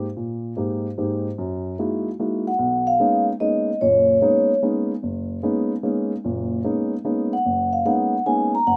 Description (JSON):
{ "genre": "jazz", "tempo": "148 BPM", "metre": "3/4", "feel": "swing 67% on 8ths", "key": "B lydian", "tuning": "A4 = 440 Hz", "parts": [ { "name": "dark baby grand piano", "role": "accompaniment", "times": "0.0-8.8 s", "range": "F#1 to G4", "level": "-25 LUFS", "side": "equal", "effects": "none" }, { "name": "vibraphone with soft mallets", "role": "melody", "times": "2.5-4.6, 7.3-8.8 s", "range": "C#5 to A#5", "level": "-21 LUFS", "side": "equal", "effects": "none" } ], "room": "little or no reverb", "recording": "recorded outdoors, with no room sound", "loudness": "-22 LUFS", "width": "mono", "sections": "0.0-2.6 A section; 2.6-8.8 B section", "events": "none", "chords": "0.0 Eb; 1.4 Gb13; 2.6 Bmaj13", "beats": "| 0.17 0.57 0.98 | 1.38 1.79 2.19 | 2.60 3.00 3.41 | 3.81 4.21 4.62 | 5.02 5.43 5.83 | 6.24 6.64 7.04 | 7.45 7.85 8.25 | 8.66" }